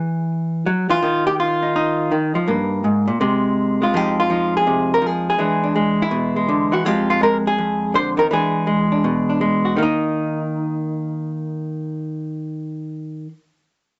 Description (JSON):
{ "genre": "solo jazz", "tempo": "165 BPM", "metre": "4/4", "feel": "swing 64% on 8ths", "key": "Eb major", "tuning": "A4 = 440 Hz", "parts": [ { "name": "vintage hollow-body jazz guitar", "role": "solo", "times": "0.0-13.3 s", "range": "F2 to C5", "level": "-20 LUFS", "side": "equal", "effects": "none" } ], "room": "moderate small room reverb, RT60 0.5 s", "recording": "nothing above 7.9 kHz", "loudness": "-20 LUFS", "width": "mono", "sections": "0.0-3.9 A section; 3.9-9.8 B section; 9.8-12.7 C section", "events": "none", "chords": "0.0 Eadd9; 1.0 Ebsus2; 2.5 Ebadd11/G; 3.2 Fm/C; 3.9 Fm7; 5.4 E7; 6.8 Fmadd9; 8.3 E7; 9.8 Eb5" }